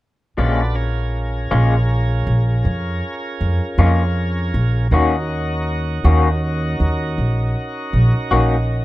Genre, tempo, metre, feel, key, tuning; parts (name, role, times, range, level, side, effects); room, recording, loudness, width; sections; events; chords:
blues; 53 BPM (dotted quarters); 12/8; straight; Bb minor; A4 = 440 Hz
electric guitar through a small old amp; accompaniment; 0.4-8.5 s; Bb2 to Gb4; -20 LUFS; left 4 dB; tremolo
tonewheel organ; sustained chords; 0.4-8.8 s; Db4 to Cb5; -26 LUFS; right 1 dB; slow rotary speaker
upright bass; bass; 0.4-8.8 s; Bb1 to F2; -17 LUFS; equal
small room ambience; rough home demo mix; -16 LUFS; side -17 dB against mid
0.4-8.8 A section
0.4 Bbm7; 4.9 Ebm7